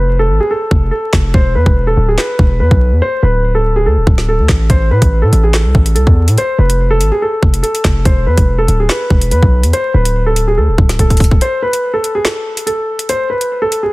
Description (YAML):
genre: hip hop, drill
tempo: 143 BPM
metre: 4/4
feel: half-time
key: unclear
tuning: A4 = 441 Hz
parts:
  - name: dark concert grand piano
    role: melody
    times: 0.0-13.9 s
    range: G#4 to C5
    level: -16 LUFS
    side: equal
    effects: low-pass filter, ping-pong delay
  - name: hard-hitting 808-style bass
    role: bass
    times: 0.0-11.4 s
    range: D1 to A2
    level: -12 LUFS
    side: equal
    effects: none
  - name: drill drum kit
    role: drums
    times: 0.7-13.8 s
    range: handclaps, hi-hat, kick drum, snare drum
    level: -12 LUFS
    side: equal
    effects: none
room: digital ambience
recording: dense, heavily limited modern master, vinyl crackle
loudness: -10 LUFS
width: side -21 dB against mid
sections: 0.0-13.9 A section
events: break 0.0-4.7, 11.4-13.9; drum fill 11.0-11.4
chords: 0.0 F; 1.3 E5; 3.0 D5; 4.7 A5; 6.4 F; 8.1 E5; 9.7 D5; 11.4 N.C.